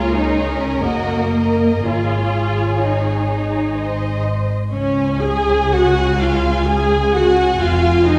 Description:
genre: classical, slow romantic movement for string orchestra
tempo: 56-69 BPM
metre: 3/4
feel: rubato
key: Db major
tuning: A4 = 436 Hz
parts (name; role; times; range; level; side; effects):
- warm symphonic violin section; melody; 0.0-8.2 s; Gb4 to Ab5; -29 LUFS; equal; none
- dark symphonic violin section; second line; 0.0-8.2 s; Ab4 to Ab5; -26 LUFS; equal; none
- warm symphonic viola section; accompaniment; 0.0-8.2 s; Bb3 to Ab4; -21 LUFS; equal; none
- dark symphonic double bass section; bass; 0.0-8.2 s; F1 to Db2; -24 LUFS; equal; none
- rich studio cello section; bass; 0.0-8.2 s; Db2 to F4; -24 LUFS; equal; none
room: wet scoring stage reverb, RT60 2.0 s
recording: recorded in a church or concert hall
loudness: -17 LUFS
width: mono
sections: 0.0-4.7 A section; 4.7-8.2 B section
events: none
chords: 0.0 Db; 0.8 Ebm/Gb; 1.9 Absus4; 3.8 Ab; 4.7 Db5; 7.6 Db/F (rootless)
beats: 0.83 | 1.86 2.83 3.77 | 4.73 5.72 6.68 | 7.61

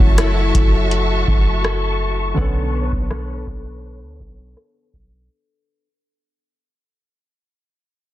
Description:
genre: contemporary R&B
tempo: 82 BPM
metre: 4/4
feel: straight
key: unclear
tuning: A4 = 440 Hz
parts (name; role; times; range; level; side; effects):
- warm baby grand piano; accompaniment; 0.0-5.3 s; D3 to A4; -29 LUFS; equal; none
- warm studio string section; sustained chords; 0.0-5.3 s; F#4 to C#6; -25 LUFS; left 1 dB; sidechain pumping
- picked steel-string acoustic guitar; arpeggios; 0.0-5.9 s; F#3 to C#5; -25 LUFS; left 6 dB; tape echo
- soft 808-style bass; bass; 0.0-5.3 s; F#1 to D2; -21 LUFS; equal; none
- booming analog drum machine; drums; 0.0-5.1 s; hi-hat, kick drum, rim click; -17 LUFS; equal; none
room: small room ambience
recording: dense, heavily limited modern master, low-pass filter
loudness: -16 LUFS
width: side -15 dB against mid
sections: 0.0-5.3 A section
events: fade-out 0.0-5.3; filter sweep 0.0-5.3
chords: 0.0 F#m7; 2.4 Bm9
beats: 0.18 0.91 1.64 | 2.37 3.10 3.83 4.57

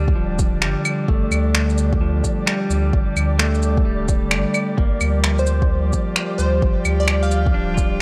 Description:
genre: future garage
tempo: 130 BPM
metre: 4/4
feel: swing 65% on 16ths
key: G minor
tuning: A4 = 440 Hz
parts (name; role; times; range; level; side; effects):
- clean electric guitar; accompaniment; 0.0-8.0 s; F3 to F4; -28 LUFS; equal; spring reverb, sidechain pumping, tape echo
- airy breathy pad; sustained chords; 0.0-8.0 s; D3 to G4; -28 LUFS; equal; chorus, sidechain pumping
- warm sub bass; bass; 0.0-8.0 s; D1 to D2; -23 LUFS; equal; sidechain pumping
- flickering grainy texture; texture; 0.0-8.0 s; D5; -35 LUFS; equal; built-in reverb
- electronic kick drum; drums; 0.1-7.9 s; none; -22 LUFS; equal; overdrive
- electronic shaker, finger snaps and claves; drums; 0.4-7.9 s; none; -25 LUFS; equal; overdrive
- glassy wavetable pluck; melody; 5.4-7.9 s; C5 to F5; -28 LUFS; equal; chorus, tape echo
room: light reverb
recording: none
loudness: -19 LUFS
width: mono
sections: 0.0-8.0 A section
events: none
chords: 0.0 G7(no3); 4.8 Bb6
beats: 0.16 0.62 | 1.08 1.54 2.00 2.47 | 2.93 3.39 3.85 4.31 | 4.78 5.24 5.70 6.16 | 6.62 7.08 7.54 8.01

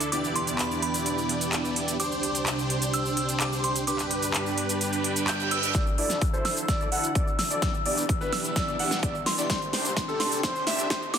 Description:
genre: EDM, festival progressive house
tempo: 128 BPM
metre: 4/4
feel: straight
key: unclear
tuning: A4 = 440 Hz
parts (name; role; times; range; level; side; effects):
- glassy synth bell; melody; 0.0-11.2 s; B5 to G6; -32 LUFS; equal; chorus, tremolo, tape echo
- lush unison pad; sustained chords; 0.0-11.2 s; C2 to A4; -34 LUFS; equal; chorus, sidechain pumping
- dense compressed supersaw; riff; 0.0-11.0 s; B3 to F#5; -30 LUFS; right 1 dB; sidechain pumping, low-pass filter, tape echo
- big-room dance drum kit; drums; 0.0-11.2 s; handclaps, hi-hat, shaker, snare drum; -29 LUFS; right 1 dB; none
- reverse cymbal and riser; sound effects; 5.0-11.2 s; none; -36 LUFS; right 6 dB; none
- dark concert grand piano; arpeggios; 5.7-11.0 s; A4 to F#5; -33 LUFS; left 2 dB; sidechain pumping, low-pass filter, tape echo
- wide detuned saw bass; bass; 5.7-11.2 s; C2 to E2; -40 LUFS; left 1 dB; none
- electronic kick drum; drums; 5.7-11.0 s; none; -28 LUFS; equal; overdrive
room: moderate recital hall reverb, RT60 1.6 s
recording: dense, heavily limited modern master, high-pass filter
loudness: -24 LUFS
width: side -8 dB against mid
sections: 0.0-5.7 A section; 5.7-11.2 B section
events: reverse cymbal 5.0-5.7; build-up 5.7-11.2; drum fill 5.7-11.2; filter sweep on supersaw synth 5.7-11.2; filter sweep on grand piano 5.7-11.2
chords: 0.1 Em7; 2.0 Csus2; 3.9 G; 5.7 Dsus2; 7.6 Em7; 9.5 Csus2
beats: | 0.12 0.59 1.06 1.53 | 2.00 2.47 2.94 3.40 | 3.87 4.34 4.81 5.28 | 5.75 6.22 6.68 7.15 | 7.62 8.09 8.56 9.03 | 9.50 9.97 10.44 10.90

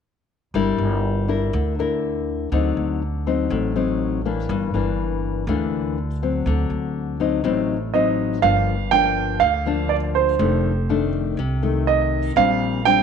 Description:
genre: bossa nova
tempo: 122 BPM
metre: 4/4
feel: straight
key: G dorian, G minor from 8.4 s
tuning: A4 = 439 Hz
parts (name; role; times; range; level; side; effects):
- nylon-string guitar; accompaniment; 0.5-13.0 s; F2 to Bb4; -22 LUFS; left 7 dB; none
- upright bass; bass; 0.5-13.0 s; F1 to D2; -24 LUFS; right 1 dB; none
- warm grand piano; melody; 7.9-13.0 s; C5 to G5; -19 LUFS; right 11 dB; slapback echo
room: light reverb, small room ambience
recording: 1960s-style stereo with parts hard left and right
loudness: -19 LUFS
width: side -6 dB against mid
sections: 0.5-8.4 A section; 8.4-13.0 B section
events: none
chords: 0.5 Gm6; 2.5 D7b9; 4.5 Gm6; 6.5 D7b9; 8.4 Gm7; 10.4 F6; 12.4 Bb69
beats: | 0.55 1.04 1.53 2.03 | 2.52 3.01 3.50 4.00 | 4.49 4.98 5.47 5.97 | 6.46 6.95 7.44 7.93 | 8.43 8.92 9.41 9.90 | 10.39 10.88 11.38 11.87 | 12.36 12.85

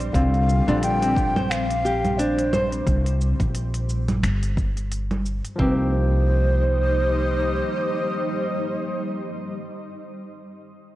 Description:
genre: organic downtempo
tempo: 88 BPM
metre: 4/4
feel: swing 57% on 16ths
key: C minor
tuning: A4 = 440 Hz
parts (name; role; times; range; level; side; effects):
- granular cloud pad; sustained chords; 0.0-9.1 s; G3 to Eb5; -31 LUFS; equal; built-in reverb, sidechain pumping
- upright bass; bass; 0.0-7.6 s; G1 to C2; -23 LUFS; equal; sidechain pumping
- organic electronic drum kit; drums; 0.0-5.6 s; cabasa, congas, finger snaps, hi-hat; -29 LUFS; right 2 dB; small room ambience
- breathy mellow ney; melody; 0.1-9.1 s; C5 to G5; -26 LUFS; equal; tape echo
- barky tine electric piano; accompaniment; 0.1-1.4, 5.6-9.6 s; D3 to G4; -30 LUFS; left 2 dB; sidechain pumping, tape echo
- nylon-string guitar; arpeggios; 0.1-5.9 s; C4 to C5; -26 LUFS; equal; tape echo
- electronic kick drum; drums; 0.1-5.7 s; none; -24 LUFS; equal; overdrive, small room ambience
room: light reverb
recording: worn, warbling old tape, cassette tape, warbly pitch drift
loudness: -20 LUFS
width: side -15 dB against mid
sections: 0.0-5.6 A section; 5.6-8.3 B section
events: none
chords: 0.0 Csus2; 5.6 Cm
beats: | 0.14 0.82 1.50 2.19 | 2.87 3.55 4.23 4.91 | 5.59 6.28 6.96 7.64

